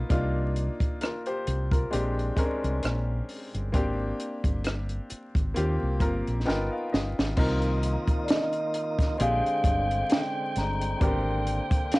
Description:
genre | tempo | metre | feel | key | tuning
R&B, neo-soul | 66 BPM | 4/4 | swing 55% on 16ths | C minor | A4 = 440 Hz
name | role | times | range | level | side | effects
clear grand piano | accompaniment | 0.0-12.0 s | Ab3 to Bb5 | -32 LUFS | left 1 dB | cassette tape
deep dub fingered electric bass | bass | 0.0-11.7 s | G1 to Eb2 | -28 LUFS | equal | none
compact cocktail drum kit | drums | 0.1-12.0 s | crash cymbal, hi-hat, kick drum, rim click, snare drum | -27 LUFS | equal | cassette tape
tonewheel organ | sustained chords | 7.4-12.0 s | D3 to G5 | -33 LUFS | equal | fast rotary speaker, overdrive, cassette tape
vibraphone with soft mallets | melody | 8.2-12.0 s | D5 to Bb5 | -29 LUFS | equal | cassette tape
room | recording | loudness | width
little or no reverb | home recording on cassette, vinyl crackle, nothing above 11.0 kHz | -25 LUFS | side -21 dB against mid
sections
0.0-7.4 A section; 7.4-12.0 B section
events
grand piano fill 5.6-7.4; drum fill 6.5-7.4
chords
0.1 Cm11; 1.9 Bb13; 3.7 Abmaj9#11; 5.6 Eb6; 6.5 G7alt; 7.4 Cm7; 9.2 Bb13; 11.0 Abmaj9#11

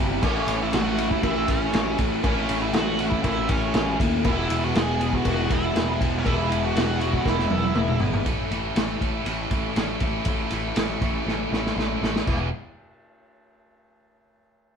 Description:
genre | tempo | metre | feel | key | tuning
classic rock | 120 BPM | 4/4 | straight | unclear | A4 = 440 Hz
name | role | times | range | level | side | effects
biting overdriven guitar | riff | 0.0-8.3 s | A2 to E4 | -30 LUFS | equal | none
distorted electric guitar | riff | 0.0-12.5 s | E2 to A4 | -30 LUFS | right 6 dB | overdrive
overdriven electric guitar | riff | 0.0-12.5 s | E2 to E4 | -30 LUFS | left 6 dB | none
growling picked electric bass | bass | 0.0-12.5 s | E1 to D#2 | -28 LUFS | equal | overdrive
octave-fuzz lead guitar | melody | 0.2-8.0 s | C#4 to G#4 | -28 LUFS | right 2 dB | wah, distortion
vintage drum kit | drums | 0.2-12.4 s | crash cymbal, kick drum, ride cymbal, snare drum, toms | -26 LUFS | equal | none
cowbell | percussion | 0.2-7.9 s | none | -37 LUFS | left 5 dB | none
room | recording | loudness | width
moderate studio reverb, RT60 0.8 s | band playing live in one room | -21 LUFS | side -7 dB against mid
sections
0.0-8.3 A section; 8.3-12.3 B section; 12.3-14.3 C section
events
drum fill 7.3-8.3, 11.3-12.3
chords
0.2 A; 4.2 E; 8.3 A; 12.3 E

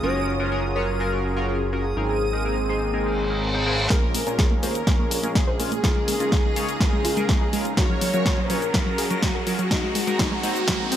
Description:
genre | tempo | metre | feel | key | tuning
progressive house | 124 BPM | 4/4 | straight | Bb minor | A4 = 440 Hz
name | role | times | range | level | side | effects
warm velvety synth lead | melody | 0.0-11.0 s | Gb4 to Db5 | -29 LUFS | left 1 dB | chorus, digital delay
supersaw pad | sustained chords | 0.0-11.0 s | Db3 to F5 | -32 LUFS | right 2 dB | sidechain pumping
chorused polysynth | stabs | 0.0-11.0 s | C4 to Db5 | -29 LUFS | left 1 dB | phaser, sidechain pumping
fat analog bass | bass | 0.0-11.0 s | Gb1 to Bb2 | -31 LUFS | equal | tube saturation, sidechain pumping, high-pass filter
backwards swelling texture | texture | 0.0-11.0 s | Bb5 to Eb6 | -36 LUFS | right 1 dB | built-in reverb, sidechain pumping
reverse cymbal and riser | sound effects | 3.1-11.0 s | none | -31 LUFS | equal | none
warm studio violin section | second line | 3.9-11.0 s | Gb4 to Db5 | -33 LUFS | equal | sidechain pumping, digital delay
wide unison pluck | arpeggios | 3.9-11.0 s | Gb3 to C5 | -29 LUFS | right 1 dB | sidechain pumping, digital delay
electronic kick drum | drums | 3.9-10.8 s | none | -23 LUFS | equal | small room ambience
house drum kit | drums | 3.9-11.0 s | hi-hat, shaker, snare drum | -27 LUFS | equal | small room ambience
room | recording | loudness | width
light reverb | high-pass filter | -20 LUFS | side -10 dB against mid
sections
0.0-3.9 A section; 3.9-11.0 B section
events
reverse cymbal 3.1-3.9; build-up 3.9-11.0; drum fill 3.9-11.0; riser 3.9-11.0; filter sweep 3.9-11.0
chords
0.0 Gbmaj7; 2.0 Abadd9; 3.9 Bbm7; 5.8 Db6; 7.8 Gbmaj7; 9.7 Abadd9

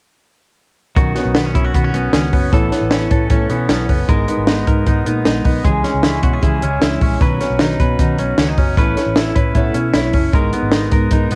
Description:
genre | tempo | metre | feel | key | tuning
jangly indie pop | 154 BPM | 4/4 | straight | B major | A4 = 440 Hz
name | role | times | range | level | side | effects
fingerpicked steel-string acoustic guitar | accompaniment | 1.0-11.4 s | B2 to C#5 | -23 LUFS | equal | cassette tape
direct-recorded clean electric guitar | arpeggios | 1.0-11.4 s | D#3 to B4 | -23 LUFS | equal | spring reverb, cassette tape
vintage muted fingered electric bass | bass | 1.0-11.4 s | F#1 to C#3 | -23 LUFS | equal | none
compact cocktail drum kit | drums | 1.0-11.4 s | hi-hat, kick drum, snare drum | -18 LUFS | equal | none
room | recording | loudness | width
light reverb | home recording on cassette | -16 LUFS | mono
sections
1.0-11.4 A section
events
none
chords
1.0 Badd9; 2.5 Aadd9; 4.1 G#madd9; 5.6 C#m; 7.2 Badd9; 8.8 Aadd9; 10.3 G#madd9

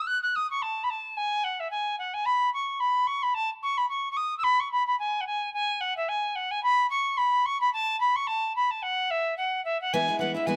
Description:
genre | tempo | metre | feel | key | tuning
celtic folk, Celtic reel | 218 BPM | 4/4 | swing 56% on 8ths | E major | A4 = 439 Hz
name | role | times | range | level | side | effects
wooden whistle | melody | 0.0-10.6 s | E5 to F#6 | -27 LUFS | equal | none
picked steel-string acoustic guitar | accompaniment | 9.9-10.6 s | E3 to E4 | -30 LUFS | equal | none
room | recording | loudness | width
light reverb | close, detailed microphones | -27 LUFS | mono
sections
0.0-5.5 A section; 5.5-10.6 A section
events
none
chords
0.0 N.C.; 9.9 E

